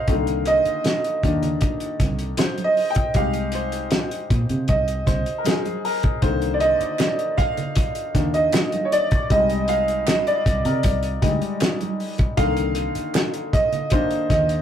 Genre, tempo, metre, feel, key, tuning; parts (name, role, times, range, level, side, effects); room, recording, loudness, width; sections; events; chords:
lush 1970s-style soul; 78 BPM; 4/4; straight; C minor; A4 = 442 Hz
bright grand piano; accompaniment; 0.0-14.6 s; D3 to G5; -22 LUFS; equal
vintage muted fingered electric bass; bass; 0.1-14.6 s; C2 to C3; -26 LUFS; equal
cloth-damped thuddy drum kit; drums; 0.1-14.6 s; hi-hat, kick drum, snare drum; -22 LUFS; equal
congas; percussion; 0.1-14.5 s; -33 LUFS; right 6 dB
group handclap; percussion; 7.0-13.3 s; -31 LUFS; right 5 dB
moderate booth ambience, RT60 0.2 s; rough rehearsal-room recording; -19 LUFS; side -9 dB against mid
0.0-14.6 A section
grand piano solo 0.0-14.6
0.1 Cm7; 3.2 Abmaj13/C; 6.2 Cm7; 9.3 Cm11; 12.4 Cm7